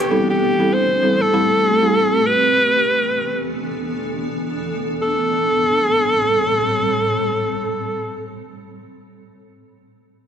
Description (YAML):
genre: afrobeats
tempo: free time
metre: none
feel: none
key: A minor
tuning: A4 = 438 Hz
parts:
  - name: bright alto saxophone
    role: melody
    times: 0.0-8.2 s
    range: G4 to C5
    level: -17 LUFS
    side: left 1 dB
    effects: tape echo
  - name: granular cloud pad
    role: sustained chords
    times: 0.0-8.2 s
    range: A2 to A4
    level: -23 LUFS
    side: right 1 dB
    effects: built-in reverb
  - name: folk marimba with medium mallets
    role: accompaniment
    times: 0.1-2.0 s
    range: G3 to A4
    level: -21 LUFS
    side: equal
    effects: none
room: little or no reverb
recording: dry, gritty hardware recording, cassette tape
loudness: -16 LUFS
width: side -8 dB against mid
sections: 0.0-5.0 A section; 5.0-7.5 B section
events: none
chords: 0.1 Am7; 2.6 E7sus4; 5.0 Am7